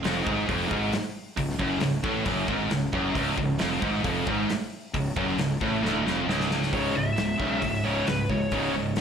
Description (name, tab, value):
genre	heavy metal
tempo	134 BPM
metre	4/4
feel	straight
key	unclear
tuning	A4 = 440 Hz
part	high-gain distorted guitar	riff	0.0-9.0 s	C#2 to C#3	-28 LUFS	right 8 dB	distortion, slapback echo
part	fuzz fingered electric bass	bass	0.0-9.0 s	C#1 to B1	-33 LUFS	left 1 dB	overdrive
part	modern studio drum kit	drums	0.0-9.0 s	hi-hat, kick drum, snare drum	-32 LUFS	left 1 dB	none
part	scooped high-gain guitar	riff	0.1-9.0 s	C#2 to C#3	-29 LUFS	left 9 dB	distortion
part	high-gain lead guitar	melody	6.7-8.7 s	B4 to E5	-30 LUFS	left 1 dB	distortion, slapback echo, digital delay
room	studio ambience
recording	live gig heard through the venue's PA, club reverb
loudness	-24 LUFS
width	side -7 dB against mid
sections	0.0-6.7 A section; 6.7-9.0 B section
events	drum fill 5.8-6.7; lead electric guitar solo 6.7-9.0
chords	0.0 C#; 6.7 C#5